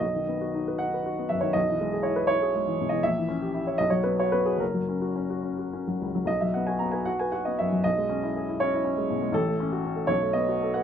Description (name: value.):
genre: classical, romantic character piece for solo piano.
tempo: 71-83 BPM (dotted quarters).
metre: 6/8.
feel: rubato.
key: B major.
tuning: A4 = 440 Hz.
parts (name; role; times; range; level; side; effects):
warm upright piano; solo; 0.0-10.8 s; F#1 to A#5; -24 LUFS; equal; none.
room: little or no reverb.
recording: close, detailed microphones.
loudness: -24 LUFS.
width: side -8 dB against mid.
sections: 0.0-10.8 A section.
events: none.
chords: 0.0 B; 1.6 C#m7/B; 3.0 A#dim7; 3.8 B5; 4.6 F#; 6.3 B5; 7.8 C#m7/B; 9.3 F#m/A; 10.1 B7.